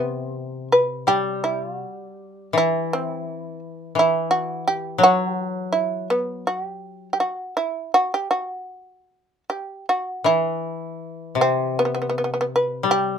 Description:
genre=japanese traditional, Japanese chamber music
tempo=82 BPM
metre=4/4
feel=uneven beats, rubato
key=E hirajoshi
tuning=A4 = 438 Hz
part: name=shamisen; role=melody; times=0.0-13.2 s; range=B3 to B4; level=-21 LUFS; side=right 2 dB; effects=none
part: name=koto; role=accompaniment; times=0.0-13.2 s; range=C3 to G3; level=-25 LUFS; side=left 4 dB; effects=none
room=light reverb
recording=minimal, uncompressed stereo recording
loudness=-20 LUFS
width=side -8 dB against mid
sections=0.0-13.2 A section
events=none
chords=none

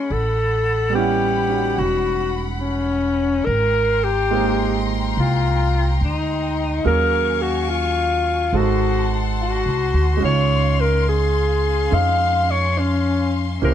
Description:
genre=jazz ballad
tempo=71 BPM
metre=4/4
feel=swing 66% on 8ths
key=unclear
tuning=A4 = 444 Hz
part: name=breathy alto saxophone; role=melody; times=0.0-13.7 s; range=Db4 to F5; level=-20 LUFS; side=left 2 dB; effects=none
part: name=warm baby grand piano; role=accompaniment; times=0.0-13.7 s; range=Gb3 to F#5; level=-26 LUFS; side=right 9 dB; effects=none
part: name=warm symphonic string section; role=sustained chords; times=0.0-13.7 s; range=Db4 to Db6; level=-28 LUFS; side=left 4 dB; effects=none
part: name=upright bass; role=bass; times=0.1-13.7 s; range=E1 to F2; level=-21 LUFS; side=equal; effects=none
room=light reverb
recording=dark, warm production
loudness=-17 LUFS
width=side -10 dB against mid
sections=0.0-13.7 A section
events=none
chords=0.1 A13; 3.5 Abmaj9; 6.8 Ebm11; 8.5 Ab7b9; 10.2 Dbmaj7

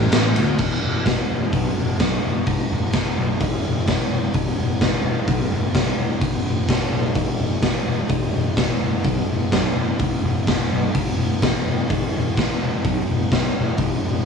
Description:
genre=garage rock duo or trio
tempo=128 BPM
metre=4/4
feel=straight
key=unclear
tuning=A4 = 439 Hz
part: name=fuzz picked electric bass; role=bass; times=0.0-14.2 s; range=E1 to D2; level=-23 LUFS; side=left 2 dB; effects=overdrive
part: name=raw garage drum kit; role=drums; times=0.1-13.9 s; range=crash cymbal, hi-hat, kick drum, ride cymbal, snare drum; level=-20 LUFS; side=equal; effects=none
room=little or no reverb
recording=home recording on cassette, studio ambience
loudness=-18 LUFS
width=side -6 dB against mid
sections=0.6-14.3 A section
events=none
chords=none

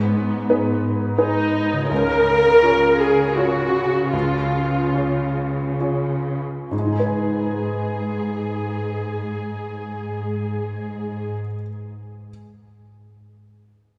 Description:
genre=cinematic, emotional film score for orchestra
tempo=64-88 BPM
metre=3/4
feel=rubato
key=G# dorian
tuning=A4 = 443 Hz
part: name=felt-muted upright piano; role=accompaniment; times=0.0-12.3 s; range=C#2 to G#5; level=-27 LUFS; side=equal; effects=none
part: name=warm studio viola section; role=accompaniment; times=0.0-11.3 s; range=B3 to A#4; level=-24 LUFS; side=equal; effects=none
part: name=concert harp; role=arpeggios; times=0.0-11.7 s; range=G#2 to G#5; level=-34 LUFS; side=equal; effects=none
part: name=rich studio cello section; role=bass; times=0.0-11.3 s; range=G#2 to C#3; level=-28 LUFS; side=equal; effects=none
room=wet cathedral reverb, RT60 4.0 s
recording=recorded in a church or concert hall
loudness=-21 LUFS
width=mono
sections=0.0-6.7 A section; 6.7-12.3 B section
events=slowing down 0.8-6.7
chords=0.0 G#m; 1.9 C#; 6.7 G#m

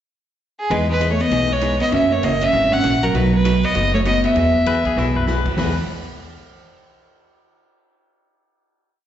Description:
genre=country, western swing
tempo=197 BPM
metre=4/4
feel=swing 61% on 8ths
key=E major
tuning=A4 = 441 Hz
part: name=clear fiddle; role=melody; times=0.6-5.2 s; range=G#4 to F#5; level=-20 LUFS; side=equal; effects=slapback echo
part: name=vintage hollow-body jazz guitar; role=second line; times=0.7-5.2 s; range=F#3 to C#4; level=-20 LUFS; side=right 1 dB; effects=slapback echo
part: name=vintage hollow-body jazz guitar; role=accompaniment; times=0.7-5.7 s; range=B2 to G#4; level=-26 LUFS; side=right 1 dB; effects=slapback echo
part: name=upright bass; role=bass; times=0.7-5.7 s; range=F#1 to F#2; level=-22 LUFS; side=left 1 dB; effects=none
part: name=swinging big-band drum kit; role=drums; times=0.7-5.7 s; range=crash cymbal, hi-hat, kick drum, ride cymbal, snare drum, toms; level=-30 LUFS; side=left 2 dB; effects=none
part: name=pedal steel guitar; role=second line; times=4.7-5.8 s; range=E4 to B4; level=-25 LUFS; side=left 7 dB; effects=slapback echo
room=light reverb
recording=live gig heard through the venue's PA, recital hall reverb, nothing above 7.9 kHz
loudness=-16 LUFS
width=side -10 dB against mid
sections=0.0-0.7 pickup bar; 0.7-5.6 A section; 5.6-6.8 final chord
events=drum fill 5.0-5.3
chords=0.0 N.C.; 0.7 Emaj7; 1.9 F#7; 3.1 B7; 4.4 Eadd9

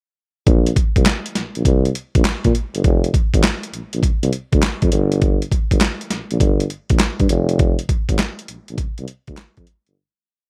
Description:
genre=R&B, new jack swing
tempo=101 BPM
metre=4/4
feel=swing 67% on 16ths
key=F dorian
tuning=A4 = 439 Hz
part: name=mellow tuba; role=bass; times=0.5-10.0 s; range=F1 to Bb2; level=-21 LUFS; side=equal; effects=none
part: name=boom bap sampler-style drum kit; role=drums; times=0.5-10.0 s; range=handclaps, hi-hat, kick drum, snare drum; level=-19 LUFS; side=equal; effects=overdrive
room=little or no reverb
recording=none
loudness=-18 LUFS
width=mono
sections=0.5-10.0 verse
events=fade-out 7.6-10.0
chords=none

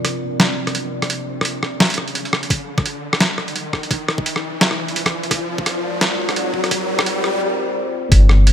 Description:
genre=half-time drum and bass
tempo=171 BPM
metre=4/4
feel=swing 56% on 16ths, half-time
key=unclear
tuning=A4 = 440 Hz
part: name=deep dark ambient pad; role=sustained chords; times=0.0-8.5 s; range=Ab2 to D5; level=-26 LUFS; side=equal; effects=chorus, built-in reverb, sidechain pumping
part: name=boom bap sampler-style drum kit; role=drums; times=0.0-8.5 s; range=hi-hat, rim click, snare drum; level=-18 LUFS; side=equal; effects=none
part: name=riser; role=sound effects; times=0.1-7.4 s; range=none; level=-26 LUFS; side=left 1 dB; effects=none
part: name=electronic kick drum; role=drums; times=2.5-8.2 s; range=none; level=-17 LUFS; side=equal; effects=none
part: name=saturated sub bass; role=bass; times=8.1-8.5 s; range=G1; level=-10 LUFS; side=equal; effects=tube saturation
room=light reverb, digital ambience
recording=high-pass filter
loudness=-17 LUFS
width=side -10 dB against mid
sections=0.0-8.1 A section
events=build-up 0.0-8.1; riser 0.1-7.4; break 7.4-8.1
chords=0.0 Bb; 5.3 Ab

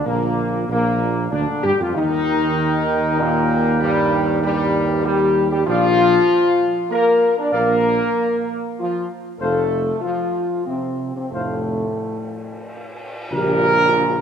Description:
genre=classical, ceremonial fanfare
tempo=96 BPM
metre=3/4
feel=straight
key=Bb major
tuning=A4 = 440 Hz
part: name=dark trumpet section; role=melody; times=0.0-14.2 s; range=Bb3 to G5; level=-22 LUFS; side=right 2 dB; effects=none
part: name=warm tuba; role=bass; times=0.0-14.2 s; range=F1 to G2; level=-24 LUFS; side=right 4 dB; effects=none
part: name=bright trombone section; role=sustained chords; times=0.1-14.2 s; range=G2 to D4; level=-25 LUFS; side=right 5 dB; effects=none
part: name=warm French horn section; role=sustained chords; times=0.1-14.2 s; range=G3 to D5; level=-19 LUFS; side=left 4 dB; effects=none
part: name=cymbal swell and tam-tam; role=percussion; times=9.4-14.2 s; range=none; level=-30 LUFS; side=left 2 dB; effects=none
room=wet concert hall reverb, RT60 2.5 s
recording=none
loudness=-16 LUFS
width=side -8 dB against mid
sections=0.0-13.3 A section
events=band accent 13.3-14.0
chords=0.0 Bb; 1.9 Eb; 5.7 Bb5; 9.4 F; 13.3 Bb5

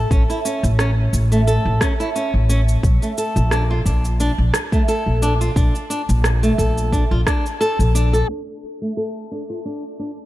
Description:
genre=organic downtempo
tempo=88 BPM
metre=4/4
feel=swing 54% on 16ths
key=D minor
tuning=A4 = 440 Hz
part: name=flamenco guitar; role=arpeggios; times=0.0-10.1 s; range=A3 to A4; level=-22 LUFS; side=equal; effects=low-pass filter, tape echo, shimmer reverb
part: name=upright bass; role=bass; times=0.0-8.2 s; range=A1 to Bb1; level=-17 LUFS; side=equal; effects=sidechain pumping
part: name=electronic kick drum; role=drums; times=0.1-7.4 s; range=none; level=-18 LUFS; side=equal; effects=none
part: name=electronic shaker and rim click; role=drums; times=0.1-10.3 s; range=none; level=-26 LUFS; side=right 1 dB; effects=none
room=light reverb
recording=dark, warm production, low-pass filter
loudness=-16 LUFS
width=side -15 dB against mid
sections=0.0-8.3 A section; 8.3-10.3 B section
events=filter sweep on nylon-string guitar 8.3-10.3; filter sweep 8.3-10.3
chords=0.0 A; 2.8 Bbmaj7; 8.3 D5

